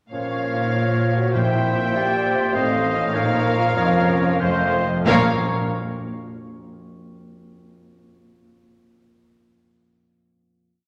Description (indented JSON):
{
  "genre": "classical, dramatic, fast romantic movement for symphony orchestra",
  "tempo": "89-101 BPM (dotted quarters)",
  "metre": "6/8",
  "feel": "rubato",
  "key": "Bb minor",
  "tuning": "A4 = 440 Hz",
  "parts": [
    { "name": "warm symphonic violin section", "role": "melody", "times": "0.1-5.3 s", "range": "F5 to G5", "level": "-31 LUFS", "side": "equal", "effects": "none" },
    { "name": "clear clarinet", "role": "second line", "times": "0.1-5.3 s", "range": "Bb4 to D5", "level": "-31 LUFS", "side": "equal", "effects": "none" },
    { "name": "mellow hollow silver concert flute", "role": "second line", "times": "0.1-5.3 s", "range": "Db5 to F5", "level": "-31 LUFS", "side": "equal", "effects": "none" },
    { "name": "warm oboe", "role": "second line", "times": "0.1-5.3 s", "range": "C5 to Eb5", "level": "-31 LUFS", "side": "equal", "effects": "none" },
    { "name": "warm studio violin section", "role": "second line", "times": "0.1-5.3 s", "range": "Db5 to F5", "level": "-36 LUFS", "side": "equal", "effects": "none" },
    { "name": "mellow bassoon", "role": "accompaniment", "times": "0.1-5.3 s", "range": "Eb3 to F3", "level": "-31 LUFS", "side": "equal", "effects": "none" },
    { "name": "warm symphonic viola section", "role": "accompaniment", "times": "0.1-5.3 s", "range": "Bb4 to Db5", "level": "-31 LUFS", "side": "equal", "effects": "none" },
    { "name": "mellow French horn section", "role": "sustained chords", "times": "0.1-5.3 s", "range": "A3 to G4", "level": "-30 LUFS", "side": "equal", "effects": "none" },
    { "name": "concert harp", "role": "arpeggios", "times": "0.1-5.3 s", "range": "F2 to G5", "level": "-32 LUFS", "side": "equal", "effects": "none" },
    { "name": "rich symphonic cello section", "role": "bass", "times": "0.1-5.3 s", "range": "F2 to Bb2", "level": "-27 LUFS", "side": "equal", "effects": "none" },
    { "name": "warm symphonic double bass section", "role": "bass", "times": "0.1-5.3 s", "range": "F1 to Bb1", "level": "-32 LUFS", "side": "equal", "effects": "none" },
    { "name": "timpani", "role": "percussion", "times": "1.3-1.9, 5.1-5.3 s", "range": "Bb2", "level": "-31 LUFS", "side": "equal", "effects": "none" }
  ],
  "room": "wet scoring stage reverb, RT60 1.9 s",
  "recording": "none",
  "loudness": "-20 LUFS",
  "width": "mono",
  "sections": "0.1-5.1 A section; 5.1-6.4 final chord",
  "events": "slowing down 2.0-5.1",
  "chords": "0.1 Bbm; 1.3 C7/Bb; 2.6 F7/A; 3.1 Bbm; 3.8 Bbm/F; 4.4 F7; 5.1 Bbm"
}